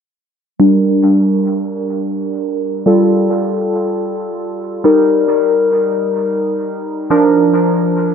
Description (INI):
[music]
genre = pop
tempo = free time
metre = none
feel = none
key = unclear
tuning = A4 = 438 Hz
[part]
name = glassy digital keys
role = accompaniment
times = 0.6-8.1 s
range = F3 to Bb4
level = -12 LUFS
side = equal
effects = chorus, phaser, low-pass filter, dub echo
[sound]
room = moderate echo chamber reverb, RT60 1.6 s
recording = echo-heavy mix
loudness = -12 LUFS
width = side -7 dB against mid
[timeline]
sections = 0.6-8.1 A section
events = filter sweep on synth keys 0.6-8.1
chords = 0.6 Gm; 2.9 Fadd9; 4.8 Eb; 7.1 Bb